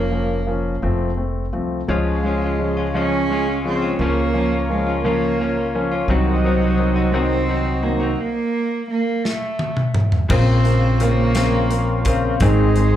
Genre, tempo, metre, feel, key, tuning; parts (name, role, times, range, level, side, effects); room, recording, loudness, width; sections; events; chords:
six-eight pop ballad; 57 BPM (dotted quarters); 6/8; straight; Bb minor; A4 = 440 Hz
warm cello; melody; 0.0-13.0 s; Gb3 to Db4; -23 LUFS; right 3 dB; slapback echo
warm concert grand piano; accompaniment; 0.0-13.0 s; Db3 to Db4; -23 LUFS; left 3 dB; slapback echo
upright bass; bass; 0.0-13.0 s; F1 to Db2; -21 LUFS; equal
warm analog pad; sustained chords; 1.9-13.0 s; Ab4 to Eb6; -28 LUFS; left 1 dB; chorus
direct-recorded clean electric guitar; arpeggios; 1.9-13.0 s; Ab2 to Ab4; -25 LUFS; left 2 dB; lush chorus, slapback echo
modern studio drum kit; drums; 9.3-12.9 s; crash cymbal, hi-hat, kick drum, snare drum, toms; -21 LUFS; equal
light reverb; live gig heard through the venue's PA, club ambience; -17 LUFS; side -11 dB against mid
0.0-1.9 A section; 1.9-10.3 B section; 10.3-13.0 C section
stop 8.2-10.3; drum fill 9.2-10.3
0.0 Bbm/F; 0.8 F; 1.9 Db; 4.0 Bbm/Db; 6.1 Cdim; 8.2 N.C.; 10.3 Bbmadd9; 12.4 Ab